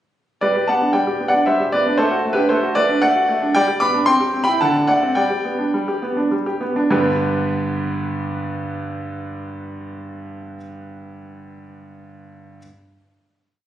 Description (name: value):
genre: classical-period piano sonatina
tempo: 102-116 BPM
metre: 3/4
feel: straight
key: G major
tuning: A4 = 440 Hz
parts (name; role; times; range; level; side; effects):
- clear grand piano; solo; 0.4-12.6 s; G2 to D6; -17 LUFS; equal; none
room: wet recital hall reverb, RT60 1.5 s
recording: recorded on a phone in the room, studio reverb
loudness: -16 LUFS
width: side -12 dB against mid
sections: 0.4-6.9 A section; 6.9-10.4 final chord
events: slowing down 2.8-6.9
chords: 0.4 G; 2.0 D/A; 3.6 G; 4.1 C; 4.6 D7; 5.2 G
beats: | 0.42 0.95 1.48 | 2.00 2.52 3.03 | 3.55 4.08 4.62 | 5.18 5.75 6.32 | 6.91 7.49 8.06 | 8.64 9.22 9.80